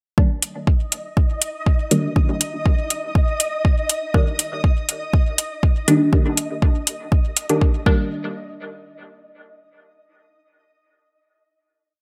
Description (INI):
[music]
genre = dub techno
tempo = 121 BPM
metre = 4/4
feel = straight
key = unclear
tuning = A4 = 438 Hz
[part]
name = filtered dub chord stab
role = stabs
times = 0.2-11.7 s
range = Eb3 to D4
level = -24 LUFS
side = equal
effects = phaser, sidechain pumping, dub echo
[part]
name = electronic kick drum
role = drums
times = 0.2-8.0 s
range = none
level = -19 LUFS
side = equal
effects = none
[part]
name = flickering grainy texture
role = texture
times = 0.9-8.1 s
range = Eb5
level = -32 LUFS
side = equal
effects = built-in reverb, subtle chorus, sidechain pumping
[part]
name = electronic hi-hat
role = drums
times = 0.4-7.6 s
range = none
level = -20 LUFS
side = equal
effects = none
[sound]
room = moderate plate reverb, RT60 1.4 s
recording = bright 1980s-style digital production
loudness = -20 LUFS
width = mono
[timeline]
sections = 0.2-8.1 groove; 8.1-12.0 final hit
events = none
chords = 0.2 Ebmaj7